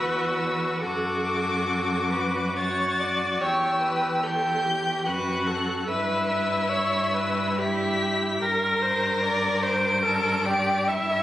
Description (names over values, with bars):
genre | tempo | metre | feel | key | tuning
classical, slow romantic movement for string quartet | 72 BPM | 3/4 | uneven beats, rubato | unclear | A4 = 440 Hz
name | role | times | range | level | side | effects
rich violin | melody | 0.0-11.2 s | D6 to D7 | -28 LUFS | left 3 dB | none
warm violin | second line | 0.0-11.2 s | E4 to Bb4 | -27 LUFS | left 1 dB | none
dark viola | accompaniment | 0.0-11.2 s | G4 to E5 | -28 LUFS | equal | none
rich cello | bass | 0.0-11.2 s | E2 to G2 | -30 LUFS | right 1 dB | none
room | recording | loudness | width
moderate concert hall reverb, RT60 2.3 s | recorded on a phone in the room, studio ambience, compression | -22 LUFS | side -13 dB against mid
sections
0.0-11.2 A section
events
none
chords
0.0 N.C.; 0.8 D/F#; 3.4 Em; 5.9 Em/G; 8.4 Gmadd11